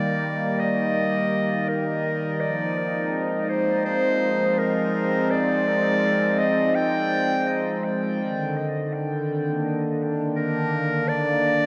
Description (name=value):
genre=ambient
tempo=83 BPM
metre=4/4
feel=straight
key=F dorian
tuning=A4 = 440 Hz
part: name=clear clarinet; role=melody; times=0.0-11.7 s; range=Bb4 to G5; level=-27 LUFS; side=equal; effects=vintage 12-bit sampler grit, dub echo
part: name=warm analog pad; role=sustained chords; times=0.0-11.7 s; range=D3 to G5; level=-26 LUFS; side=equal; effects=chorus
room=wet lush hall reverb, RT60 2.3 s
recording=dreamy mix soaked in reverb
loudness=-24 LUFS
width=mono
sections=0.0-11.7 A section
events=none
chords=0.0 Ebmaj7; 2.4 Fm9; 8.2 Ebmaj7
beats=0.24 0.96 1.69 | 2.41 3.13 3.85 4.58 | 5.30 6.02 6.75 7.47 | 8.19 8.91 9.64 10.36 | 11.08